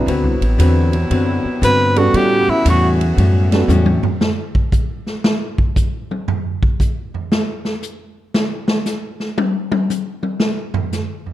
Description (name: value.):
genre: jazz, big band swing.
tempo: 116 BPM.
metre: 4/4.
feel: swing 66% on 8ths.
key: unclear.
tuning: A4 = 439 Hz.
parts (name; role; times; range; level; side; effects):
dark baby grand piano; accompaniment; 0.0-3.7 s; G3 to A4; -19 LUFS; right 3 dB; none.
clear saxophone section; sustained chords; 0.0-4.2 s; C3 to F#4; -23 LUFS; equal; none.
upright bass; bass; 0.0-4.1 s; A1 to A2; -15 LUFS; equal; none.
archtop guitar, miked and amplified; accompaniment; 0.1-4.1 s; A2 to B4; -20 LUFS; left 3 dB; none.
swinging big-band drum kit; drums; 0.1-11.3 s; hi-hat, kick drum, ride cymbal, snare drum, toms; -19 LUFS; equal; none.
clear tenor saxophone; melody; 1.6-2.9 s; E4 to B4; -15 LUFS; right 1 dB; none.
room: moderate large studio reverb, RT60 1.2 s.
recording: dark, warm production.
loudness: -15 LUFS.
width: side -14 dB against mid.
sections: 0.0-4.2 A section; 4.2-11.3 A section.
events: tenor saxophone solo 0.0-4.2; drum fill 3.7-4.2; drum solo 4.2-11.3.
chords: 0.1 D13; 2.1 A13; 4.2 N.C..